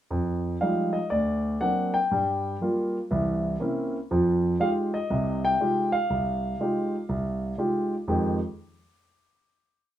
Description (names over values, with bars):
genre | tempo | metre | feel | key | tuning
solo jazz | 120 BPM | 4/4 | swing 66% on 8ths | F minor | A4 = 441 Hz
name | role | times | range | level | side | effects
warm grand piano | solo | 0.1-8.4 s | C2 to G5 | -24 LUFS | equal | none
room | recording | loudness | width
wet club reverb, RT60 0.5 s | heard from further back in the room | -24 LUFS | side -12 dB against mid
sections
0.1-8.1 A section; 8.1-10.0 final chord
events
none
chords
0.1 Fm9; 1.1 Daug7; 2.1 Gm7; 3.1 C7b9; 4.1 Fm9